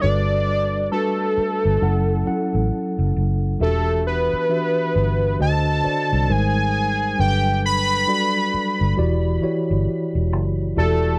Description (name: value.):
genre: R&B, neo-soul.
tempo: 67 BPM.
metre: 4/4.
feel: swing 61% on 16ths.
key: E dorian.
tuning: A4 = 440 Hz.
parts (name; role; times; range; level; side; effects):
fat analog lead; melody; 0.0-11.2 s; A4 to B5; -24 LUFS; equal; none.
mellow tine electric piano; accompaniment; 0.0-11.2 s; D3 to F#5; -26 LUFS; equal; none.
vintage muted fingered electric bass; bass; 0.0-11.2 s; E1 to D2; -23 LUFS; equal; none.
room: light reverb.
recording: none.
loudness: -20 LUFS.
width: mono.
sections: 0.0-10.8 A section.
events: none.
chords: 0.0 Gmaj9; 1.8 F#m7; 3.6 Em9; 5.4 D7b9; 6.3 G#maj9; 7.2 Gmaj9; 9.0 Em9.